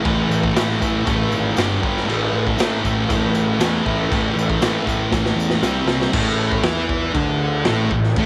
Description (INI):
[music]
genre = garage rock duo or trio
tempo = 118 BPM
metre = 4/4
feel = straight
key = unclear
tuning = A4 = 440 Hz
[part]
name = thick fuzz guitar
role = riff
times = 0.0-8.3 s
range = G2 to E4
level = -22 LUFS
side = equal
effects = distortion
[part]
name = raw garage drum kit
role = drums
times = 0.0-8.3 s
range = crash cymbal, kick drum, snare drum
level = -25 LUFS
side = equal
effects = none
[part]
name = fuzz picked electric bass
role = bass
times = 0.1-8.3 s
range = G1 to A2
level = -27 LUFS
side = equal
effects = overdrive, tube saturation
[part]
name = tambourine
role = percussion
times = 0.3-6.0 s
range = none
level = -42 LUFS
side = equal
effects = none
[sound]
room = light reverb, small room ambience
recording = none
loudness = -19 LUFS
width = mono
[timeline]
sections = 0.0-6.1 A section; 6.1-8.3 B section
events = drum fill 5.1-6.1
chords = 0.0 A5; 1.6 G5; 2.1 A5; 5.6 C5; 6.1 A5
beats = | 0.05 0.56 1.07 1.57 | 2.08 2.59 3.09 3.60 | 4.10 4.61 5.12 5.62 | 6.13 6.63 7.14 7.65 | 8.15